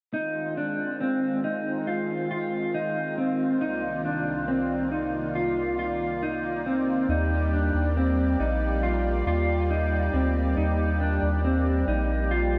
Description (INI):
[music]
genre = dream pop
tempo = 69 BPM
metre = 4/4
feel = straight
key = unclear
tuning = A4 = 442 Hz
[part]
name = lush unison pad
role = sustained chords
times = 0.1-12.6 s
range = C2 to D5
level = -33 LUFS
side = equal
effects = chorus
[part]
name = mellow electric guitar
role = arpeggios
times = 0.1-12.6 s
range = C4 to F4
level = -29 LUFS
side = equal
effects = subtle chorus, delay
[part]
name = round analog bass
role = bass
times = 7.1-12.6 s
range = Bb1 to Eb2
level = -28 LUFS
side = equal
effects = none
[sound]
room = wet huge ambient reverb, RT60 4.7 s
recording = dark, warm production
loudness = -26 LUFS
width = mono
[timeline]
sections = 0.1-12.6 A section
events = none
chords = 0.1 Fm7; 3.6 Cm11; 7.1 Ebmaj7